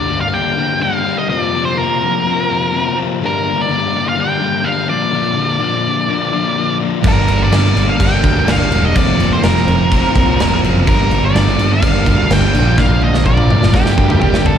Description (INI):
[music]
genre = quiet-loud alternative rock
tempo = 125 BPM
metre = 4/4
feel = straight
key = G minor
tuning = A4 = 441 Hz
[part]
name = octave-fuzz lead guitar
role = melody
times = 0.0-14.6 s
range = G4 to G5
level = -18 LUFS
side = right 1 dB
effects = distortion, slapback echo, digital delay
[part]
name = overdriven semi-hollow guitar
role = riff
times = 0.0-14.6 s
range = F2 to D4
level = -18 LUFS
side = left 8 dB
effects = none
[part]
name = sludgy distorted guitar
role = riff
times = 7.0-14.6 s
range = F2 to D4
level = -17 LUFS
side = right 8 dB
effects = overdrive
[part]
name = growling picked electric bass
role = bass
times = 7.0-14.6 s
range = E1 to D2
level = -16 LUFS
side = equal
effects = overdrive
[part]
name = big rock drum kit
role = drums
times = 7.0-14.6 s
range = crash cymbal, kick drum, snare drum, toms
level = -17 LUFS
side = equal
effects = none
[part]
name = phased string machine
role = sustained chords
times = 7.1-14.6 s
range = F4 to Bb5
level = -28 LUFS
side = right 1 dB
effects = none
[sound]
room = little or no reverb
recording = live gig heard through the venue's PA, recital hall reverb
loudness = -12 LUFS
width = side -8 dB against mid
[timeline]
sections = 0.0-14.6 A section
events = drum fill 12.8-14.6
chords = 0.0 Gm; 1.3 Fsus4; 3.2 Gm; 4.9 Bb; 7.0 Gmadd9; 9.0 Fsus4; 10.9 Gmadd9; 12.5 Bb; 13.7 Gmadd9